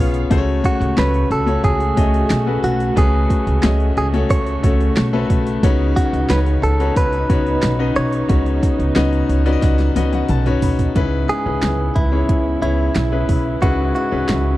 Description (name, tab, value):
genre	piano-driven pop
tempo	90 BPM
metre	4/4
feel	straight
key	C# minor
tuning	A4 = 439 Hz
part	clear concert grand piano	accompaniment	0.0-14.6 s	G#2 to B5	-20 LUFS	left 4 dB	none
part	warm studio string section	sustained chords	0.0-14.6 s	C#3 to E#5	-29 LUFS	right 4 dB	none
part	upright bass	bass	0.0-14.6 s	B1 to C#2	-19 LUFS	right 1 dB	none
part	deep house drum kit	drums	0.1-14.4 s	handclaps, hi-hat, kick drum, snare drum, toms	-18 LUFS	right 1 dB	none
part	direct-recorded clean electric guitar	melody	0.7-14.6 s	E4 to C#5	-22 LUFS	right 2 dB	spring reverb
room	little or no reverb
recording	dry, close 1970s-style studio recording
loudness	-15 LUFS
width	side -16 dB against mid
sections	0.0-11.0 A section; 11.0-14.6 B section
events	grand piano fill 9.0-11.0; drum fill 9.6-11.0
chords	0.3 F#m; 5.6 Badd9; 11.0 C#m7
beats	| 0.31 0.97 1.64 2.30 | 2.97 3.63 4.30 4.96 | 5.63 6.30 6.96 7.63 | 8.29 8.96 9.62 10.29 | 10.96 11.62 12.29 12.96 | 13.62 14.29